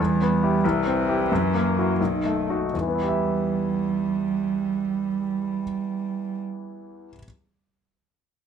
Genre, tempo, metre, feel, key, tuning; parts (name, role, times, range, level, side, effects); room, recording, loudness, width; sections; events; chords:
quick classical-period movement for piano trio; 80-95 BPM (dotted quarters); 6/8; rubato; E minor; A4 = 440 Hz
warm cello; second line; 0.0-6.4 s; D#3 to G3; -26 LUFS; right 7 dB
bright grand piano; accompaniment; 0.0-7.3 s; B1 to E5; -24 LUFS; left 2 dB
light reverb; dark, warm production; -22 LUFS; side -7 dB against mid
0.0-2.7 A section; 2.7-5.6 B section
slowing down 0.0-2.7
0.0 Em; 0.6 C; 1.3 F#7; 2.0 B7; 2.7 Em